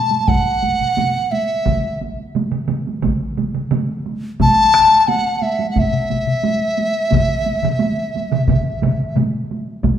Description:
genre	japanese traditional, taiko drum ensemble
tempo	88 BPM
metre	4/4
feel	straight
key	unclear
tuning	A4 = 437 Hz
part	mellow hollow large dizi	melody	0.0-9.2 s	E5 to A5	-16 LUFS	left 1 dB	none
part	taiko ensemble	percussion	0.1-10.0 s	none	-23 LUFS	right 4 dB	none
part	taiko ensemble	percussion	0.3-10.0 s	none	-22 LUFS	left 3 dB	none
part	taiko ensemble	percussion	0.3-10.0 s	none	-22 LUFS	equal	none
part	solo taiko drums	percussion	1.7-9.3 s	none	-22 LUFS	right 4 dB	none
room	wet recital hall reverb, RT60 1.8 s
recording	minimal, uncompressed stereo recording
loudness	-15 LUFS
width	side -9 dB against mid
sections	0.0-9.8 A section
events	none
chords	none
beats	0.28 0.97 | 1.66 2.34 3.03 3.72 | 4.40 5.08 5.77 6.45 | 7.13 7.81 8.49 9.17 | 9.85

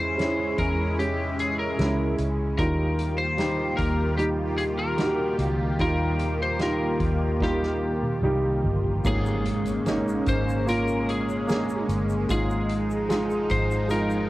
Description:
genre	pop ballad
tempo	75 BPM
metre	4/4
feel	straight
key	unclear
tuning	A4 = 441 Hz
part	lightly driven lead guitar	melody	0.0-14.3 s	G4 to C5	-30 LUFS	left 2 dB	cassette tape
part	warm grand piano	accompaniment	0.0-14.3 s	Ab2 to Ab4	-28 LUFS	right 2 dB	cassette tape
part	lush unison pad	sustained chords	0.0-14.3 s	Eb3 to G4	-29 LUFS	equal	chorus, phaser, cassette tape
part	vintage muted fingered electric bass	bass	0.0-14.3 s	G1 to Fb2	-29 LUFS	equal	none
part	soft-mallet drum kit	drums	0.2-14.1 s	crash cymbal, hi-hat, kick drum, snare drum, toms	-31 LUFS	equal	none
part	egg shaker	percussion	9.0-14.3 s	none	-51 LUFS	left 4 dB	none
part	impact	sound effects	9.0-12.3 s	none	-37 LUFS	equal	none
room	little or no reverb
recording	home recording on cassette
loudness	-22 LUFS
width	side -17 dB against mid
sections	0.0-9.1 A section; 9.1-14.3 B section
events	drum fill 7.4-9.1; impact 9.1-12.3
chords	0.0 Dbm/Fb; 2.6 Ebadd9; 9.1 Bbm7/Ab; 12.3 Fm7/Ab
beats	0.18 0.98 1.79 | 2.59 3.39 4.19 4.99 | 5.79 6.60 7.41 8.23 | 9.05 9.86 10.68 11.49 | 12.30 13.10 13.90

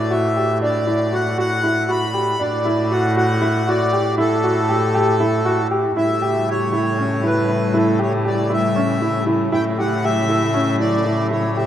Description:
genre	contemporary instrumental, chamber music in an uneven meter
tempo	236 BPM (eighths)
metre	7/8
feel	straight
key	A mixolydian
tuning	A4 = 440 Hz
part	accordion	melody	0.0-11.7 s	A4 to B5	-22 LUFS	left 1 dB	none
part	warm grand piano	arpeggios	0.0-11.7 s	C#4 to G4	-20 LUFS	right 1 dB	none
part	warm cello	bass	0.0-11.7 s	A2	-22 LUFS	equal	none
part	rich studio string section	sustained chords	6.0-11.7 s	C#3 to A3	-25 LUFS	left 4 dB	none
room	wet cathedral reverb, RT60 5.8 s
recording	in a vast, echoing space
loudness	-16 LUFS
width	side -10 dB against mid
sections	0.0-6.0 A section; 6.0-11.7 B section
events	none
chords	0.0 Bm/A (rootless); 4.2 A5; 6.0 A7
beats	0.11 0.36 | 0.62 0.87 1.13 1.38 1.64 1.89 2.15 | 2.40 2.66 2.91 3.17 3.42 3.67 3.93 | 4.18 4.44 4.69 4.95 5.20 5.46 5.71 | 5.96 6.22 6.47 6.73 6.98 7.24 7.49 | 7.75 8.00 8.26 8.51 8.76 9.02 9.27 | 9.53 9.78 10.04 10.29 10.54 10.80 11.05 | 11.31 11.56

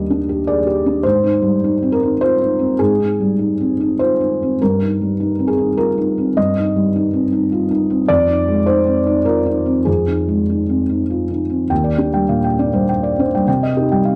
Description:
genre	neoclassical minimalist piano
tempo	102 BPM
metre	3/4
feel	rubato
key	Eb major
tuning	A4 = 438 Hz
part	felt-muted upright piano	solo	0.0-14.2 s	Eb2 to G5	-17 LUFS	equal	none
room	light reverb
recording	dry, close 1970s-style studio recording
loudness	-17 LUFS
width	mono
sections	0.0-11.7 A section; 11.7-14.2 B section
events	none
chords	0.0 Ebmaj7; 1.0 Abmaj7; 4.6 Cm7/G; 8.1 Fm7; 11.7 Ebmaj7; 13.5 Cm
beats	0.46 | 1.04 1.62 2.20 | 2.79 3.39 3.99 | 4.60 5.19 5.77 | 6.37 6.95 7.52 | 8.09 8.66 9.25 | 9.87 10.48 11.10 | 11.70 12.30 12.88 | 13.47 14.04

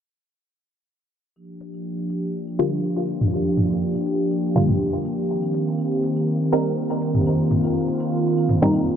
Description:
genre	dub techno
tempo	122 BPM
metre	4/4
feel	swing 53% on 16ths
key	G minor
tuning	A4 = 440 Hz
part	airy breathy pad	sustained chords	1.4-9.0 s	Eb3 to G4	-21 LUFS	equal	chorus
part	electronic claves and toms	percussion	1.4-8.8 s	none	-24 LUFS	equal	overdrive
part	electronic hi-hat	drums	1.6-8.6 s	none	-54 LUFS	left 2 dB	none
part	filtered dub chord stab	stabs	2.6-9.0 s	D3 to Bb4	-25 LUFS	equal	chorus, phaser, dub echo
room	light reverb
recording	low-pass filter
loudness	-19 LUFS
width	side -8 dB against mid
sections	1.4-9.0 A section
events	filter sweep on analog synth pad 1.4-9.0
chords	1.4 Gm7; 5.3 Cm7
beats	| 1.36 1.85 2.34 2.84 | 3.33 3.82 4.31 4.80 | 5.29 5.79 6.28 6.77 | 7.26 7.75 8.25 8.74

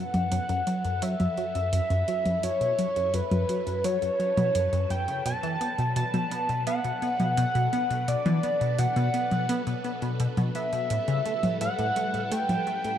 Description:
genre	ambient, sequencer-driven space music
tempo	85 BPM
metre	4/4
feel	straight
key	F# phrygian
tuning	A4 = 438 Hz
part	pulse-width lead	melody	0.0-13.0 s	B4 to A5	-27 LUFS	equal	chorus, analog delay
part	phased string machine	sustained chords	0.0-13.0 s	F#3 to A4	-39 LUFS	equal	ensemble chorus, phaser
part	tight sequenced synth	riff	0.0-13.0 s	F#2 to B3	-28 LUFS	equal	chorus, phaser, analog delay
part	bubbling stepped-filter texture	texture	0.0-13.0 s	B4	-44 LUFS	left 1 dB	chorus, built-in reverb
part	booming analog drum machine	percussion	0.1-13.0 s	hi-hat, toms	-32 LUFS	equal	analog delay
room	wet plate reverb, RT60 3.3 s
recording	echo-heavy mix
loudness	-24 LUFS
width	side -10 dB against mid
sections	0.0-13.0 A section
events	fade-in on string machine 0.0-13.0; fade-in on synth texture 0.0-13.0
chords	0.0 F#m7; 5.3 Bm7; 10.9 A7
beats	0.32 1.02 1.73 | 2.43 3.14 3.85 4.55 | 5.26 5.96 6.67 7.38 | 8.08 8.79 9.49 10.20 | 10.90 11.61 12.32

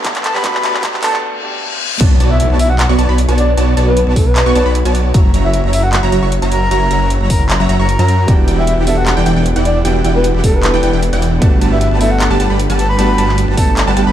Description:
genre	future bass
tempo	153 BPM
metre	4/4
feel	half-time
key	B minor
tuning	A4 = 441 Hz
part	felt-muted upright piano	accompaniment	0.0-2.0, 8.3-14.1 s	G3 to A4	-20 LUFS	right 4 dB	sidechain pumping
part	supersaw stab	riff	0.0-14.1 s	E3 to C#6	-18 LUFS	right 2 dB	lush chorus, vintage 12-bit sampler grit, sidechain pumping
part	electronic kick drum	drums	0.0-13.7 s	none	-12 LUFS	equal	studio reverb
part	pop drum kit	drums	0.0-14.0 s	crash cymbal, handclaps, hi-hat	-21 LUFS	equal	high-pass filter on snare, studio reverb, high-pass filter on hats, high-pass filter on cymbals
part	riser, reverse cymbal and impact	sound effects	0.9-3.6 s	none	-23 LUFS	left 2 dB	none
part	breathy flute-like synth lead	melody	0.2-14.1 s	A4 to B5	-19 LUFS	left 1 dB	chorus, sidechain pumping, dub echo
part	wide unison pluck	arpeggios	2.0-14.1 s	G4 to C#6	-26 LUFS	equal	cassette tape, sidechain pumping, dub echo
part	wide detuned saw bass	bass	2.0-14.1 s	E1 to F#2	-14 LUFS	equal	chorus, sidechain pumping
room	light reverb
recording	dark, warm production, high-pass filter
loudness	-11 LUFS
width	side -11 dB against mid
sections	0.0-2.0 A section; 2.0-14.1 B section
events	build-up 0.0-2.0; drum fill 0.0-1.2; filter sweep 0.0-2.0; riser 0.9-2.0; break 1.2-2.0; reverse cymbal 1.2-2.0; drop 2.0-14.1; impact 2.0-3.6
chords	0.0 Gmaj7; 2.0 Bm7; 5.1 F#7; 8.3 Em7; 11.4 Gmaj7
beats	0.04 | 0.44 0.83 1.22 1.61 | 2.01 2.40 2.79 3.18 | 3.57 3.97 4.36 4.75 | 5.14 5.54 5.93 6.32 | 6.71 7.10 7.50 7.89 | 8.28 8.67 9.06 9.46 | 9.85 10.24 10.63 11.03 | 11.42 11.81 12.20 12.59 | 12.99 13.38 13.77

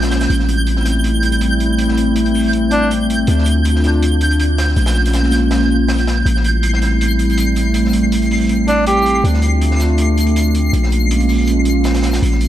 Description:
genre	drum and bass, jungle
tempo	161 BPM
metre	4/4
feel	swing 54% on 16ths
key	A minor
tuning	A4 = 443 Hz
part	warbly tape-like pad	sustained chords	0.0-12.5 s	G3 to F4	-17 LUFS	equal	chorus, built-in reverb
part	long sustained 808-style bass	bass	0.0-12.5 s	A1 to D2	-16 LUFS	equal	none
part	crunchy breakbeat drum kit	drums	0.0-12.5 s	hi-hat, snare drum	-27 LUFS	equal	high-pass filter on hats, high-pass filter on snare, high-pass filter on room
part	twinkling granular texture	texture	0.0-12.5 s	G6 to C7	-23 LUFS	right 1 dB	built-in reverb
part	breathy tenor saxophone	melody	2.7-2.9, 8.7-9.2 s	D4 to G4	-19 LUFS	right 1 dB	vintage 12-bit sampler grit, dub echo
room	light reverb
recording	dry, gritty hardware recording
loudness	-12 LUFS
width	side -12 dB against mid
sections	0.0-12.5 A section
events	none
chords	0.3 Am7; 3.3 Dm7; 4.8 Bbm7; 6.3 Am7; 9.2 Dm7; 10.7 Bbm7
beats	| 0.30 0.67 1.04 1.41 | 1.79 2.16 2.53 2.90 | 3.28 3.65 4.02 4.39 | 4.77 5.14 5.51 5.89 | 6.26 6.63 7.00 7.38 | 7.75 8.12 8.49 8.87 | 9.24 9.61 9.98 10.36 | 10.73 11.10 11.48 11.85 | 12.22

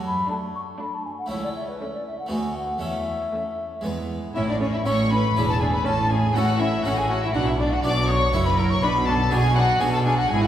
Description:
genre	classical, baroque-style concerto movement with solo episodes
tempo	120 BPM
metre	3/4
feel	straight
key	A major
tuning	A4 = 440 Hz
part	mellow hollow wooden flute	melody	0.0-10.5 s	B4 to D#6	-27 LUFS	left 1 dB	none
part	harpsichord	accompaniment	0.0-10.5 s	C#2 to B4	-31 LUFS	right 1 dB	none
part	warm chamber cello section	bass	0.0-10.5 s	C#2 to B2	-27 LUFS	right 1 dB	none
part	rich chamber violin section	melody	0.3-10.5 s	E4 to D6	-29 LUFS	left 3 dB	none
part	warm chamber violin section	second line	0.3-10.5 s	B3 to D5	-29 LUFS	left 1 dB	none
part	warm chamber viola section	accompaniment	0.3-10.5 s	G#3 to E4	-31 LUFS	right 2 dB	none
part	rich chamber double bass section	bass	4.4-10.5 s	E1 to B1	-25 LUFS	right 1 dB	none
room	wet concert hall reverb, RT60 2.5 s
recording	heard from further back in the room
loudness	-20 LUFS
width	side -11 dB against mid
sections	0.0-4.4 A section; 4.4-10.5 B section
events	none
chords	0.0 D/F#; 1.3 A/C#; 2.3 Bm7/D; 2.8 A/E; 3.9 E; 4.4 A; 5.4 E7; 5.9 A; 7.3 Bm; 8.3 F#7; 8.8 Bm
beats	0.30 0.81 | 1.31 1.81 2.31 | 2.82 3.34 3.85 | 4.36 4.86 5.36 | 5.86 6.35 6.85 | 7.34 7.84 8.33 | 8.82 9.32 9.81 | 10.31

